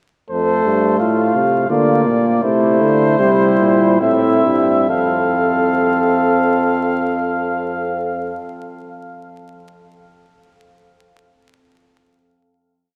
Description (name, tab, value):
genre	classical, imitative canzona for brass ensemble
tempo	65-88 BPM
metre	3/4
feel	straight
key	F major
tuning	A4 = 440 Hz
part	mellow trumpet	melody	0.3-8.4 s	C5 to F5	-23 LUFS	equal	none
part	mellow flugelhorn	second line	0.3-8.4 s	E4 to A4	-22 LUFS	equal	none
part	warm trombone	accompaniment	0.3-8.3 s	G3 to C4	-22 LUFS	equal	none
part	mellow euphonium	bass	0.3-8.4 s	F2 to D3	-22 LUFS	equal	none
room	wet cathedral reverb, RT60 5.7 s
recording	vinyl crackle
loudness	-16 LUFS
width	mono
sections	0.3-4.9 exposition; 4.9-10.4 final chord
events	slowing down 0.3-6.3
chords	0.3 F; 1.7 Bb/D; 2.4 C; 4.9 F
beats	| 0.30 0.99 1.70 | 2.43 3.19 4.01 | 4.89 5.81 6.73 | 7.64